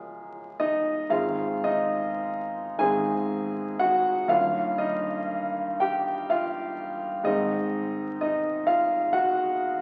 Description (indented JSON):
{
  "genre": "classical, romantic nocturne for solo piano",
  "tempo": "34-44 BPM (dotted quarters)",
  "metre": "12/8",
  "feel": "rubato",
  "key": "unclear",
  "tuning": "A4 = 436 Hz",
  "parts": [
    { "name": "clear upright piano", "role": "solo", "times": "0.0-9.8 s", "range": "Db2 to Ab5", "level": "-26 LUFS", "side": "equal", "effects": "none" }
  ],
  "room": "wet recital hall reverb, RT60 1.4 s",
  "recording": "very old 78 rpm record, vinyl crackle",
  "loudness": "-26 LUFS",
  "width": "mono",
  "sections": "0.0-9.8 A section",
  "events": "none",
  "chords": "0.0 Db; 1.1 Ab; 4.3 Eb7/G; 7.3 Ab",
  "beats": "| 1.13 2.81 4.32 5.83 | 7.29 8.71"
}